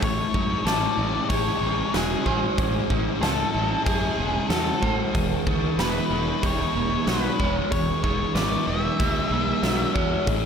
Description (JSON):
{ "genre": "rock, shoegaze and dream pop", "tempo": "94 BPM", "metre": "4/4", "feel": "straight", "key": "A major", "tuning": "A4 = 440 Hz", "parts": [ { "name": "octave-fuzz lead guitar", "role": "melody", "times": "0.0-9.9 s", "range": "G#4 to E5", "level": "-29 LUFS", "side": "left 2 dB", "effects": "distortion, ping-pong delay" }, { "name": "electric guitar through a small old amp", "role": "arpeggios", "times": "0.0-10.5 s", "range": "F#4 to A5", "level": "-32 LUFS", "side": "left 3 dB", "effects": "wide subtle chorus, ping-pong delay" }, { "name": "thick fuzz guitar", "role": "riff", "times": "0.0-10.5 s", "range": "E2 to E4", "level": "-28 LUFS", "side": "left 7 dB", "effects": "distortion, ensemble chorus" }, { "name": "fuzz fingered electric bass", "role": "bass", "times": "0.0-10.5 s", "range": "E1 to A2", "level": "-29 LUFS", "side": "equal", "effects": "overdrive" }, { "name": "huge arena drum kit", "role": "drums", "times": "0.0-10.4 s", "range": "hi-hat, kick drum, snare drum", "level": "-28 LUFS", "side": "equal", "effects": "none" }, { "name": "overdriven semi-hollow guitar", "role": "riff", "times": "0.3-10.5 s", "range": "E3 to D5", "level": "-28 LUFS", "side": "right 6 dB", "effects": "reverse reverb" } ], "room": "wet lush hall reverb, RT60 2.1 s", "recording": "dreamy mix soaked in reverb", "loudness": "-21 LUFS", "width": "side -7 dB against mid", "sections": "0.0-10.5 A section", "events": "none", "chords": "0.0 Amaj7; 5.1 E7" }